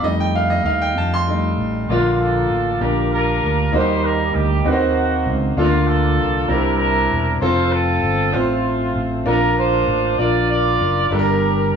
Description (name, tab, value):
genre	slow gospel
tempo	65 BPM (dotted quarters)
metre	6/8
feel	straight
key	Bb major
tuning	A4 = 442 Hz
part	clear concert grand piano	accompaniment	0.0-11.8 s	G2 to C6	-19 LUFS	left 1 dB	none
part	fingered electric bass	bass	0.0-11.8 s	E1 to F2	-21 LUFS	right 1 dB	none
part	clear horn section	melody	1.9-11.8 s	A3 to D5	-20 LUFS	right 2 dB	none
room	wet large studio reverb, RT60 1.3 s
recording	band playing live in one room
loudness	-16 LUFS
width	side -6 dB against mid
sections	0.0-1.9 A section; 1.9-11.8 B section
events	grand piano solo 0.0-1.9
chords	0.0 F7; 1.9 Bb; 3.7 Eb; 4.6 Ebm6; 5.6 Bb/D; 6.5 C9; 7.4 F; 9.3 Bb; 11.1 Gm